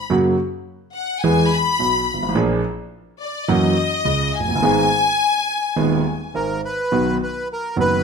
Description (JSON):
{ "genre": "tango", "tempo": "106 BPM", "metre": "4/4", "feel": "rubato", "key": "G# minor", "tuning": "A4 = 440 Hz", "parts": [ { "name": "clear studio violin section", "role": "second line", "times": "0.0-6.3 s", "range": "D5 to B5", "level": "-20 LUFS", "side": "left 5 dB", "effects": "none" }, { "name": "warm concert grand piano", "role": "accompaniment", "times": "0.1-8.0 s", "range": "D#1 to G#4", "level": "-19 LUFS", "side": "right 2 dB", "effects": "none" }, { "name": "bandoneon", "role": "melody", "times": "6.4-8.0 s", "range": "A#4 to B4", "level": "-22 LUFS", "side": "right 1 dB", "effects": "none" } ], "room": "moderate large studio reverb, RT60 1.1 s", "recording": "none", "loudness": "-17 LUFS", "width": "side -6 dB against mid", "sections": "0.0-6.9 A section; 6.9-8.0 B section", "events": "violin section solo 0.0-6.9", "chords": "0.1 F#; 1.2 E; 2.4 A#7; 3.5 F#7; 4.6 G#m; 6.9 B" }